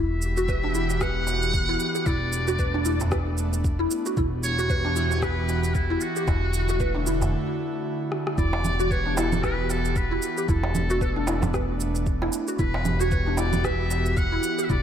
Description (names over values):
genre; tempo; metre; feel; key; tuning
organic downtempo; 114 BPM; 4/4; swing 57% on 16ths; E dorian; A4 = 439 Hz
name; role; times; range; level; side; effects
trumpet with metal mute; melody; 0.0-14.8 s; E4 to F#5; -30 LUFS; equal; ping-pong delay
airy breathy pad; sustained chords; 0.0-14.8 s; D3 to G4; -30 LUFS; right 1 dB; chorus, sidechain pumping
mallet-like synth pluck; arpeggios; 0.0-14.8 s; D4 to B4; -29 LUFS; equal; ensemble chorus, ping-pong delay
upright bass; bass; 0.0-14.8 s; E1; -27 LUFS; equal; none
electronic shaker, rim click and congas; drums; 0.2-14.8 s; none; -32 LUFS; right 3 dB; none
electronic kick drum; drums; 0.5-14.8 s; none; -28 LUFS; equal; none
darbuka; percussion; 0.6-14.0 s; none; -34 LUFS; right 2 dB; none
room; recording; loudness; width
light reverb; none; -22 LUFS; side -9 dB against mid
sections
0.0-8.4 A section; 8.4-14.8 A section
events
break 7.3-8.4; drum fill 8.1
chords
0.0 Emadd9; 2.1 Bm7/E; 4.2 Emadd9; 6.3 D/E; 8.4 Em9; 10.5 Bm7/E; 12.6 Emadd9